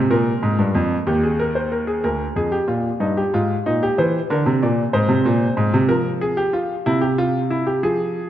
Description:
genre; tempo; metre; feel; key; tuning
classical, baroque-style two-part invention for grand piano; 62 BPM (dotted quarters); 6/8; straight; Ab major; A4 = 440 Hz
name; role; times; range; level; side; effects
clear baby grand piano; solo; 0.0-8.3 s; D2 to D5; -17 LUFS; equal; none
room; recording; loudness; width
wet concert hall reverb, RT60 1.9 s; dark, warm production; -17 LUFS; side -11 dB against mid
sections
0.0-2.0 A section; 2.0-8.3 B section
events
none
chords
0.1 Bb5; 1.1 Eb; 2.0 Bb7/D; 3.0 Eb/G; 4.0 C7; 4.9 Abadd9; 5.9 Fm; 6.8 C

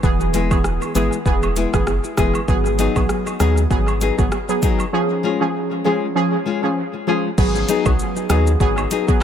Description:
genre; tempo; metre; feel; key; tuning
dancehall; 98 BPM; 4/4; swing 56% on 16ths; G# minor; A4 = 439 Hz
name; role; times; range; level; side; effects
synth brass stab; accompaniment; 0.0-9.2 s; E3 to G#4; -20 LUFS; right 1 dB; chorus, dub echo
round analog bass; bass; 0.0-8.9 s; E1 to D#2; -21 LUFS; equal; none
afro-pop drum kit; drums; 0.0-9.2 s; crash cymbal, hi-hat, kick drum, rim click, shaker; -21 LUFS; equal; dub echo
nylon-string guitar; arpeggios; 0.3-9.1 s; F#3 to G#4; -23 LUFS; left 6 dB; dub echo
cabasa and woodblock; percussion; 0.3-9.1 s; none; -33 LUFS; right 3 dB; dub echo
room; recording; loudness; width
digital ambience; echo-heavy mix; -16 LUFS; side -9 dB against mid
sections
0.0-7.4 A section; 7.4-9.2 B section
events
none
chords
0.0 E; 2.5 G#m7; 4.9 C#; 7.4 G#m7

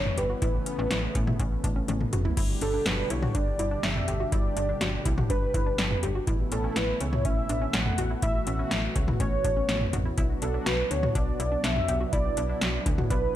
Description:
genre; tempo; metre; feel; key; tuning
synth-pop; 123 BPM; 4/4; straight; unclear; A4 = 440 Hz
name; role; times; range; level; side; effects
warm velvety synth lead; melody; 0.0-13.4 s; A4 to F#5; -31 LUFS; right 1 dB; chorus, tape echo
brassy analog pad; sustained chords; 0.0-13.4 s; B2 to G4; -35 LUFS; right 1 dB; chorus
analog pluck; arpeggios; 0.0-13.3 s; C#4 to G4; -36 LUFS; left 1 dB; chorus, tape echo
slap-like FM bass; bass; 0.0-13.3 s; F#1 to A2; -31 LUFS; equal; none
electro analog drum machine; drums; 0.1-13.2 s; crash cymbal, hi-hat, kick drum, snare drum, toms; -28 LUFS; equal; none
room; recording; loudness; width
light reverb, digital ambience; none; -24 LUFS; side -12 dB against mid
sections
0.0-2.4 A section; 2.4-13.4 B section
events
drum fill 1.9-2.4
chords
0.4 Aadd9; 2.4 G; 6.3 Aadd9; 10.2 Bm

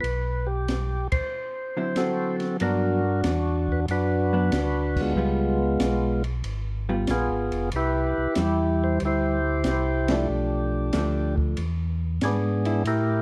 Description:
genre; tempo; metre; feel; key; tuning
soul jazz organ trio; 94 BPM; 4/4; swing 69% on 8ths; G major; A4 = 438 Hz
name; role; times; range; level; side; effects
percussive tonewheel organ; melody; 0.0-13.2 s; Ab3 to C5; -28 LUFS; equal; slow rotary speaker
mellow tonewheel organ; bass; 0.0-13.2 s; E#1 to A2; -29 LUFS; equal; chorus vibrato, slow rotary speaker
open jazz drum kit; drums; 0.0-13.1 s; crash cymbal, hi-hat, kick drum, ride cymbal, snare drum; -34 LUFS; equal; none
vintage hollow-body jazz guitar; accompaniment; 1.8-13.2 s; D3 to E#4; -31 LUFS; equal; none
room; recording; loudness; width
light reverb; dark, warm production; -25 LUFS; mono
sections
0.0-2.6 A section; 2.6-13.2 B section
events
band accent 1.0-1.3, 4.8-5.2, 10.0-10.3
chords
0.0 G; 1.3 D9; 2.6 Gmaj7; 5.2 C#7#11; 7.7 Cmaj7; 10.3 Bm7b5; 11.6 E7

